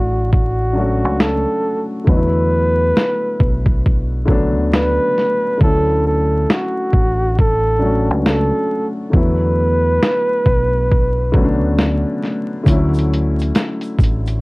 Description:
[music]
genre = lo-fi hip hop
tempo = 68 BPM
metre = 4/4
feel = swing 64% on 16ths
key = D major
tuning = A4 = 440 Hz
[part]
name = breathy flugelhorn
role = melody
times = 0.0-11.8 s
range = F#4 to B4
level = -18 LUFS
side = right 1 dB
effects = low-pass filter
[part]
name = dark upright piano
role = accompaniment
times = 0.0-14.4 s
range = D3 to D5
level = -20 LUFS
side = left 1 dB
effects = cassette tape, low-pass filter
[part]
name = deep dub fingered electric bass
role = bass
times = 0.0-14.4 s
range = A1 to E2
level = -18 LUFS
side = equal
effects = tube saturation
[part]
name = lo-fi sampler-style drum kit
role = drums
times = 0.3-14.4 s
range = hi-hat, kick drum, snare drum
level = -15 LUFS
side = equal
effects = none
[part]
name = tube shaker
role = percussion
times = 12.7-14.4 s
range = none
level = -47 LUFS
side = right 4 dB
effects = none
[sound]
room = light reverb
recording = worn, warbling old tape, cassette tape, vinyl crackle, warbly pitch drift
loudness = -14 LUFS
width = side -23 dB against mid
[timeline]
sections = 0.0-14.4 A section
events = break 0.0-12.7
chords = 0.0 Dmaj7; 2.1 E9sus4; 5.6 Dmaj7; 9.1 E9sus4; 12.7 Dmaj7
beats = 0.31 1.19 | 2.08 2.96 3.84 4.72 | 5.61 6.49 7.37 8.25 | 9.13 10.02 10.90 11.78 | 12.66 13.55

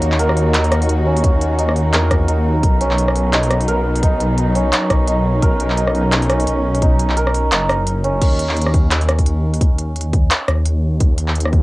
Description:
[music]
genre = half-time drum and bass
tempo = 172 BPM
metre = 4/4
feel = swing 58% on 16ths, half-time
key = unclear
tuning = A4 = 440 Hz
[part]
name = rich chamber cello section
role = sustained chords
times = 0.0-8.2 s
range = Eb3 to Gb4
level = -22 LUFS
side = left 2 dB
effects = vintage 12-bit sampler grit, sidechain pumping, cassette tape
[part]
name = santur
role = arpeggios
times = 0.0-11.6 s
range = Db4 to Bb4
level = -21 LUFS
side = right 2 dB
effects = cassette tape, analog delay
[part]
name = dark detuned saw bass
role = bass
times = 0.0-11.6 s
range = F#1 to Fb2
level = -18 LUFS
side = equal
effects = none
[part]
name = industrial drum kit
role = drums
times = 0.0-11.6 s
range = crash cymbal, handclaps, hi-hat, rim click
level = -20 LUFS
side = equal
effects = none
[part]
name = electronic kick drum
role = drums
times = 1.2-11.6 s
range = none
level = -15 LUFS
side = equal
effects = none
[sound]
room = light reverb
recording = home recording on cassette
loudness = -14 LUFS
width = side -19 dB against mid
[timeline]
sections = 0.0-8.2 A section; 8.2-11.6 A section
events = drop 0.0-8.2, 8.2-11.6; kick drops out 7.5-8.2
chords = 0.0 Ebm; 2.6 B; 8.2 N.C.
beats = 0.19 0.54 0.89 | 1.24 1.59 1.94 2.29 | 2.63 2.98 3.33 3.68 | 4.03 4.38 4.73 5.08 | 5.42 5.77 6.12 6.47 | 6.82 7.17 7.52 7.87 | 8.21 8.56 8.91 9.26 | 9.61 9.96 10.31 10.66 | 11.01 11.36

